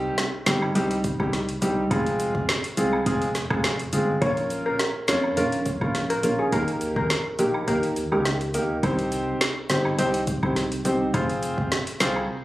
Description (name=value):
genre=dancehall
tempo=104 BPM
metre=4/4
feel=straight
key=unclear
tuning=A4 = 439 Hz
part: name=warm grand piano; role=accompaniment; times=0.0-12.2 s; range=G3 to C5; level=-25 LUFS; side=equal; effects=sidechain pumping
part: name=solid FM bass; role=bass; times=0.0-12.2 s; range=F1 to F2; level=-28 LUFS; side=right 1 dB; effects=none
part: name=afro-pop drum kit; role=drums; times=0.2-12.1 s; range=hi-hat, kick drum, rim click, snare drum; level=-27 LUFS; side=equal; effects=none
part: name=cabasa and woodblock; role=percussion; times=0.5-12.3 s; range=none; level=-36 LUFS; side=right 1 dB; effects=none
part: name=steel pan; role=melody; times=4.2-8.2 s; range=G4 to Db5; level=-28 LUFS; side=equal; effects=tape echo
room=light reverb, studio reverb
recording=recorded on a phone in the room, club reverb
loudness=-22 LUFS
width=side -16 dB against mid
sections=0.0-12.4 A section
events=break 12.3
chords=0.0 Cm; 1.9 Fm; 4.2 Bbm; 6.5 Eb; 8.8 Cm; 11.1 Fm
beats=0.18 0.76 1.33 | 1.91 2.49 3.06 3.64 | 4.22 4.79 5.37 5.95 | 6.53 7.10 7.68 8.26 | 8.83 9.41 9.99 10.56 | 11.14 11.72